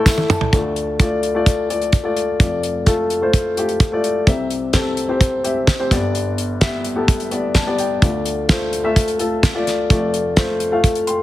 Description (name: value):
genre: piano-driven pop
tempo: 128 BPM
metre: 4/4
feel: straight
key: D dorian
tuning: A4 = 440 Hz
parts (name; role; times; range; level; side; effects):
- dark upright piano; accompaniment; 0.0-11.2 s; F1 to C6; -18 LUFS; left 2 dB; none
- damped 70s drum kit; drums; 0.1-11.2 s; hi-hat, kick drum, snare drum, toms; -16 LUFS; right 1 dB; none
room: light reverb, small room ambience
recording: heavily compressed radio sound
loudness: -16 LUFS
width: side -14 dB against mid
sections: 0.5-11.2 A section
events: drum fill 0.1-0.5; upright piano fill 7.3-8.0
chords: 0.0 Asus4; 0.5 Dm; 2.4 F6; 4.3 C; 5.9 G; 8.0 Dm; 9.9 F6